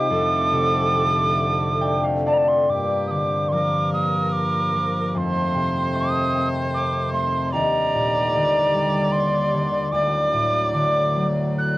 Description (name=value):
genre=celtic folk, Celtic slow air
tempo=66-77 BPM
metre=3/4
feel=rubato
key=G minor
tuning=A4 = 445 Hz
part: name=mellow wooden whistle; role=melody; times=0.0-11.8 s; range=A5 to F#6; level=-23 LUFS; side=right 2 dB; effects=cassette tape
part: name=rich viola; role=second line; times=0.0-11.8 s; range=G4 to D5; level=-27 LUFS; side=equal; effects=cassette tape
part: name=concert harp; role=accompaniment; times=0.0-11.8 s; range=D2 to G5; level=-22 LUFS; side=left 2 dB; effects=cassette tape
part: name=pedal harmonium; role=sustained chords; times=0.0-11.8 s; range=D2 to Bb3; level=-30 LUFS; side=right 2 dB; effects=cassette tape
room=light reverb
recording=home recording on cassette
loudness=-18 LUFS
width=side -17 dB against mid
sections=0.0-2.7 A section; 2.7-11.8 B section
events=harp fill 1.4-2.7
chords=0.1 F6; 2.7 Gm7; 5.2 F7; 7.5 Ebmaj7; 9.9 D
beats=| 0.11 0.94 1.82 | 2.70 3.53 4.35 | 5.16 5.96 6.74 | 7.52 8.32 9.12 | 9.91 10.73 11.60